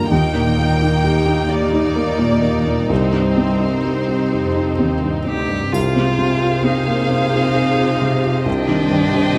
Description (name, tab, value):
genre	cinematic, emotional film score for orchestra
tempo	43 BPM (dotted quarters)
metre	6/8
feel	rubato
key	unclear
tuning	A4 = 440 Hz
part	rich studio violin section	melody	0.0-5.3 s	C5 to G5	-27 LUFS	equal	none
part	felt-muted upright piano	accompaniment	0.0-9.4 s	C2 to Ab4	-22 LUFS	equal	none
part	rich studio viola section	accompaniment	0.0-9.4 s	Bb3 to C5	-26 LUFS	equal	none
part	concert harp	arpeggios	0.0-9.4 s	G2 to F5	-26 LUFS	equal	none
part	warm studio cello section	bass	0.0-9.4 s	C2 to C3	-25 LUFS	equal	none
part	rich cello	melody	5.3-9.4 s	D4 to G4	-24 LUFS	equal	none
part	rich studio violin section	second line	5.7-9.4 s	Eb5 to G5	-26 LUFS	equal	none
part	triangle	percussion	5.7-7.5 s	none	-40 LUFS	equal	none
room	moderate recital hall reverb, RT60 1.4 s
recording	close, detailed microphones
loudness	-17 LUFS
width	mono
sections	0.0-5.8 A section; 5.8-9.4 B section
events	none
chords	0.1 Eb; 2.9 Cm; 5.8 Fm/C; 8.5 Cm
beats	| 0.11 1.49 | 2.90 4.33 | 5.75 7.12 | 8.47